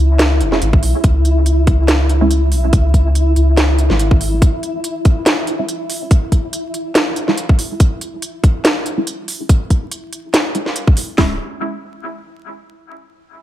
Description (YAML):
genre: deep dubstep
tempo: 142 BPM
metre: 4/4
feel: swing 55% on 16ths, half-time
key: C# minor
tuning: A4 = 440 Hz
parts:
  - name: soft dub sub bass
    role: bass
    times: 0.0-4.4, 11.2-11.4 s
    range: C#1 to C#2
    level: -14 LUFS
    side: equal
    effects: none
  - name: flickering grainy texture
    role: texture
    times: 0.0-11.2 s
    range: E4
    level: -24 LUFS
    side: left 1 dB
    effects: built-in reverb
  - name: garage drum kit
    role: drums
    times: 0.2-11.1 s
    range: hi-hat, snare drum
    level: -17 LUFS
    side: equal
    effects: none
  - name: filtered dub chord stab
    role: stabs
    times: 0.5-11.3 s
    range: G#3 to E4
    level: -22 LUFS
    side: right 1 dB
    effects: phaser, wide subtle chorus, cassette tape, dub echo
  - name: garage drum kit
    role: drums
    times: 0.7-11.3 s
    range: hi-hat, kick drum, snare drum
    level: -12 LUFS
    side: equal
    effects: none
room: light reverb, digital ambience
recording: vinyl crackle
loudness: -13 LUFS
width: side -13 dB against mid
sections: 0.0-11.2 A section; 11.2-12.9 B section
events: filter sweep on synth stab 0.0-11.2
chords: 0.0 C#m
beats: 0.20 0.62 | 1.04 1.46 1.89 2.31 | 2.73 3.15 3.58 4.00 | 4.42 4.84 5.27 5.69 | 6.11 6.53 6.96 7.38 | 7.80 8.22 8.65 9.07 | 9.49 9.91 10.34 10.76 | 11.18